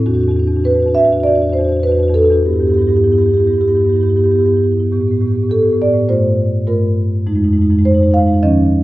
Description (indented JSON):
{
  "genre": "classical, contemporary piece for solo marimba",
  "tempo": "94-105 BPM",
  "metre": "4/4",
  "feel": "rubato",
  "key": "unclear",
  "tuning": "A4 = 440 Hz",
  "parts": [
    { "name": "marimba with soft mallets", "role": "solo", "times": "0.0-8.8 s", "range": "E2 to F5", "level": "-11 LUFS", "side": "equal", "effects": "none" }
  ],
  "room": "wet scoring stage reverb, RT60 1.5 s",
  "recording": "worn, warbling old tape, cassette tape, warbly pitch drift",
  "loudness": "-11 LUFS",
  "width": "side -17 dB against mid",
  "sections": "0.0-8.8 A section",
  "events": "none",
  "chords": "0.1 Esus2; 2.5 G6; 4.9 Asus2; 6.1 Gm9; 7.3 Fm7"
}